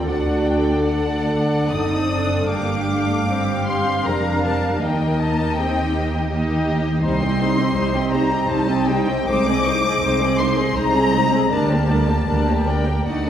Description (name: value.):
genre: classical, slow romantic movement for string orchestra.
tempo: 66-84 BPM.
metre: 3/4.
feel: rubato.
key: G minor.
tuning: A4 = 445 Hz.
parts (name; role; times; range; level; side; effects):
rich studio violin section; melody; 0.0-13.3 s; F#5 to Eb6; -25 LUFS; left 3 dB; none.
warm studio violin section; second line; 0.0-13.3 s; Eb4 to F5; -24 LUFS; left 2 dB; none.
warm studio viola section; accompaniment; 0.0-13.3 s; G3 to F#4; -23 LUFS; equal; none.
rich studio cello section; bass; 0.0-13.3 s; C2 to G2; -24 LUFS; right 2 dB; none.
rich studio double bass section; bass; 0.0-13.3 s; F1 to Eb2; -25 LUFS; right 1 dB; none.
room: wet scoring stage reverb, RT60 1.7 s.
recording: heard from further back in the room.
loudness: -17 LUFS.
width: side -9 dB against mid.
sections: 0.0-13.3 A section.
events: none.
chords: 0.1 D7b9; 2.5 Gm; 4.8 Eb; 7.0 Cm; 9.3 Ab/C; 11.5 Gm/D.